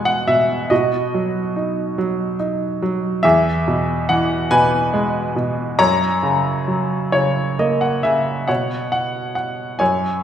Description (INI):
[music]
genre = classical, lyrical solo piano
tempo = 44-48 BPM (dotted quarters)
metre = 6/8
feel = rubato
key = B major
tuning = A4 = 440 Hz
[part]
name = bright baby grand piano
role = solo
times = 0.0-10.2 s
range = E2 to A#5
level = -16 LUFS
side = equal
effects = none
[sound]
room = wet scoring stage reverb, RT60 1.6 s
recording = recorded in a church or concert hall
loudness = -16 LUFS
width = side -9 dB against mid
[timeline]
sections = 0.0-8.5 A section; 8.5-10.2 B section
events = grand piano fill 7.1-8.5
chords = 0.0 E; 0.7 B; 3.2 E; 5.8 F#; 8.5 Bsus2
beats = | 0.71 1.98 | 3.24 4.51 | 5.80 7.14 | 8.50 9.81